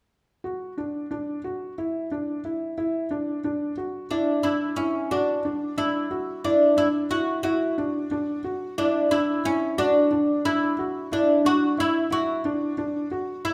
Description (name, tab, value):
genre	contemporary instrumental, contemporary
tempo	180 BPM (eighths)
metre	7/8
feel	straight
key	unclear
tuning	A4 = 439 Hz
part	felt-muted upright piano	arpeggios	0.4-13.5 s	D4 to F#4	-28 LUFS	equal	none
part	oud	melody	4.1-13.5 s	C#4 to F#4	-26 LUFS	equal	none
room	wet recital hall reverb, RT60 1.3 s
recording	none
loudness	-25 LUFS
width	mono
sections	0.4-5.1 A section; 5.1-13.5 B section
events	none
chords	0.4 Dadd9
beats	| 0.45 0.78 1.11 1.45 1.78 2.11 2.44 | 2.78 3.11 3.44 3.78 4.11 4.45 4.78 | 5.11 5.45 5.78 6.11 6.45 6.78 7.11 | 7.45 7.78 8.12 8.45 8.78 9.12 9.45 | 9.78 10.12 10.45 10.79 11.12 11.45 11.79 | 12.12 12.45 12.79 13.12 13.45